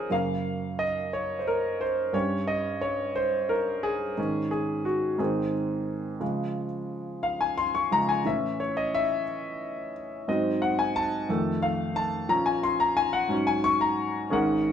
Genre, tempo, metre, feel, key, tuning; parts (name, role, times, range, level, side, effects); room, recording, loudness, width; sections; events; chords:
gospel; 59 BPM (dotted quarters); 6/8; straight; A4 = 440 Hz
warm concert grand piano; solo; 0.0-14.7 s; Ab1 to Db6; -25 LUFS; left 1 dB
wet studio reverb, RT60 0.8 s; band playing live in one room; -25 LUFS; side -8 dB against mid
0.0-14.3 A section
grand piano solo 0.0-14.3
0.1 Gb; 2.1 Gdim; 4.2 Absus4; 5.2 Ab; 6.2 Db; 8.2 A; 10.3 Ab7; 11.3 F7; 12.3 Bbm; 13.3 Ab9sus4